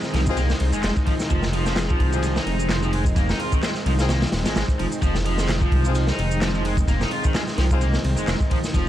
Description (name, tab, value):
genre	breakbeat, breaks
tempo	129 BPM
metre	4/4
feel	swing 55% on 16ths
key	F minor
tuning	A4 = 440 Hz
part	lush unison pad	sustained chords	0.0-8.9 s	Eb3 to Eb4	-28 LUFS	equal	chorus, sidechain pumping
part	crunchy breakbeat drum kit	drums	0.0-8.9 s	kick drum, ride cymbal, snare drum	-23 LUFS	equal	none
part	house drum kit	drums	0.0-8.8 s	handclaps, ride cymbal, shaker	-36 LUFS	right 1 dB	none
part	raw garage guitar	riff	0.1-8.9 s	Eb3 to F4	-28 LUFS	right 1 dB	overdrive, tube saturation, vintage 12-bit sampler grit, digital delay
part	dark detuned saw bass	bass	0.1-8.9 s	Eb1 to C2	-22 LUFS	equal	none
part	brilliant horn section	stabs	0.3-7.8 s	C4 to Ab4	-32 LUFS	left 4 dB	digital delay
room	studio reverb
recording	dark, warm production, vinyl crackle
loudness	-19 LUFS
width	side -12 dB against mid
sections	0.0-8.9 A section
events	none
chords	0.0 Fm7